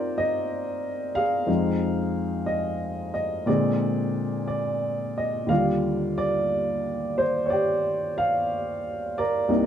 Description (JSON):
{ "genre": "solo jazz", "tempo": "60 BPM", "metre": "4/4", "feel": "swing 68% on 8ths, rubato", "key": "unclear", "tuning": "A4 = 439 Hz", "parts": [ { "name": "dark upright piano", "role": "solo", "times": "0.0-9.7 s", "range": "C2 to F5", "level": "-23 LUFS", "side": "equal", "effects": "none" } ], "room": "moderate stone room reverb, RT60 1.0 s", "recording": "band playing live in one room", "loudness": "-23 LUFS", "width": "side -9 dB against mid", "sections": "0.0-9.7 A section", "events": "none", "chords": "0.0 Cm9; 1.5 Fm7; 3.5 Bb9; 5.5 Ebmaj9" }